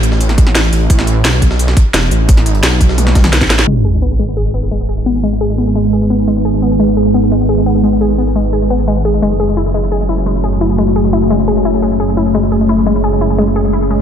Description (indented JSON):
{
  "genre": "dark technical drum and bass",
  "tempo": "173 BPM",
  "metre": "4/4",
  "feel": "straight",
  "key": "G# phrygian",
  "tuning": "A4 = 441 Hz",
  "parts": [
    { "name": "wide detuned saw bass", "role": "bass", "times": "0.0-14.0 s", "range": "E1 to B1", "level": "-15 LUFS", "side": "equal", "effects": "chorus, sidechain pumping" },
    { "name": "drum and bass drum kit", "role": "drums", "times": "0.0-3.7 s", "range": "hi-hat, snare drum, toms", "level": "-16 LUFS", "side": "equal", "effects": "low-pass filter on hats, low-pass filter on snare, low-pass filter on toms" },
    { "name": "jungle sampler-style drum kit", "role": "drums", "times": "0.0-3.6 s", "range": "hi-hat, snare drum", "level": "-22 LUFS", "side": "equal", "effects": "high-pass filter on snare, high-pass filter on hats, high-pass filter on room" },
    { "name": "electronic kick drum", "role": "drums", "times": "0.4-3.5 s", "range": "none", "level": "-10 LUFS", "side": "equal", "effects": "none" },
    { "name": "deep dark ambient pad", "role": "sustained chords", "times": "4.9-14.0 s", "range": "G#3 to C#5", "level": "-14 LUFS", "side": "right 1 dB", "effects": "chorus, built-in reverb, sidechain pumping" },
    { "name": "wide unison pluck", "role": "arpeggios", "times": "3.7-14.0 s", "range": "G#3 to G#4", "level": "-16 LUFS", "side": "left 3 dB", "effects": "sidechain pumping, ping-pong delay" },
    { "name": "sub drop", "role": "sound effects", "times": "3.7-5.1 s", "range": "none", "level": "-16 LUFS", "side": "equal", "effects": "none" }
  ],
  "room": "moderate lush hall reverb, RT60 1.8 s, digital ambience",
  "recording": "dreamy mix soaked in reverb, low-pass filter",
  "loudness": "-10 LUFS",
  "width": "side -8 dB against mid",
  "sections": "0.0-3.7 A section; 3.7-14.0 B section",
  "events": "drum fill 3.0-3.7; band accent 3.6; impact 3.7-5.1; filter sweep 3.7-14.0",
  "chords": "0.0 A5; 3.7 G#m; 9.2 F#m",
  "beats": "0.21 0.55 | 0.90 1.25 1.59 1.94 | 2.29 2.63 2.98 3.33 | 3.67 4.02 4.37 4.71 | 5.06 5.41 5.75 6.10 | 6.45 6.80 7.14 7.49 | 7.84 8.18 8.53 8.88 | 9.22 9.57 9.92 10.26 | 10.61 10.96 11.30 11.65 | 12.00 12.35 12.69 13.04 | 13.38 13.73"
}